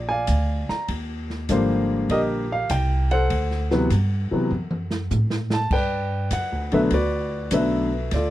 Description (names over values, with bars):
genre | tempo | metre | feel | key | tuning
jazz piano trio | 100 BPM | 4/4 | swing 69% on 8ths | unclear | A4 = 440 Hz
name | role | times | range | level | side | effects
warm grand piano | melody | 0.0-8.3 s | C3 to Bb5 | -22 LUFS | left 1 dB | none
upright bass | bass | 0.0-8.3 s | Ab1 to A2 | -24 LUFS | equal | none
open jazz drum kit | drums | 0.3-8.3 s | crash cymbal, hi-hat, kick drum, ride cymbal, snare drum, toms | -31 LUFS | equal | none
room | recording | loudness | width
little or no reverb | dry, close 1970s-style studio recording | -20 LUFS | side -14 dB against mid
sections
0.0-5.7 A section; 5.7-8.3 B section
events
drum fill 4.5-5.7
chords
0.0 Bb7; 0.9 Ebmaj7; 3.3 D7; 5.7 Gmaj9